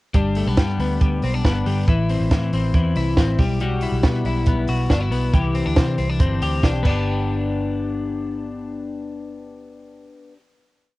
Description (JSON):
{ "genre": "jangly indie pop", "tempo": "138 BPM", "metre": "4/4", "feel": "straight", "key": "G major", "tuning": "A4 = 441 Hz", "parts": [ { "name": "twelve-string electric guitar", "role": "arpeggios", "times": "0.1-10.4 s", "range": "E3 to G4", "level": "-23 LUFS", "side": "left 3 dB", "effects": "vibrato effect, cassette tape" }, { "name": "vintage muted picked electric bass", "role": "bass", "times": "0.1-10.1 s", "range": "G1 to C3", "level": "-23 LUFS", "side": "right 1 dB", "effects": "none" }, { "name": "compact cocktail drum kit", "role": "drums", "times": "0.1-7.0 s", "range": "crash cymbal, hi-hat, kick drum, snare drum", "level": "-18 LUFS", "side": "right 1 dB", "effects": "cassette tape" } ], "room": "light reverb", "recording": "home recording on cassette", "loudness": "-18 LUFS", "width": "side -18 dB against mid", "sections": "0.1-7.1 verse; 7.1-10.5 final hit", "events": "none", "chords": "0.1 G; 1.9 Am; 3.4 Emadd9/B; 5.3 Cadd9; 6.9 G" }